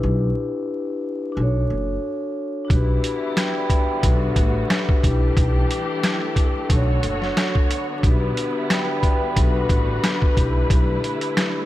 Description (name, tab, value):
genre	hip hop, boom-bap hip-hop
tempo	90 BPM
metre	4/4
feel	swing 55% on 16ths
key	unclear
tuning	A4 = 440 Hz
part	vibraphone with medium mallets	accompaniment	0.0-11.7 s	D4 to B5	-24 LUFS	left 2 dB	high-pass filter, low-pass filter
part	upright bass	bass	0.0-11.0 s	F#1 to B1	-22 LUFS	equal	none
part	muted studio string section	sustained chords	2.7-11.7 s	D3 to C#5	-28 LUFS	equal	high-pass filter, low-pass filter
part	boom bap sampler-style drum kit	drums	2.7-11.5 s	hi-hat, kick drum, rim click, snare drum	-20 LUFS	equal	none
room	light reverb, small room ambience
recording	vinyl crackle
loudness	-18 LUFS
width	side -15 dB against mid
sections	0.0-2.7 A section; 2.7-11.7 B section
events	stop 2.0-2.7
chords	0.0 G6/B; 1.4 Bm9; 2.7 Em7/B; 4.0 Gmaj7; 5.0 A7sus4/B; 6.7 Bm9; 8.0 Em7/B; 9.4 Gmaj7; 10.4 A7sus4/B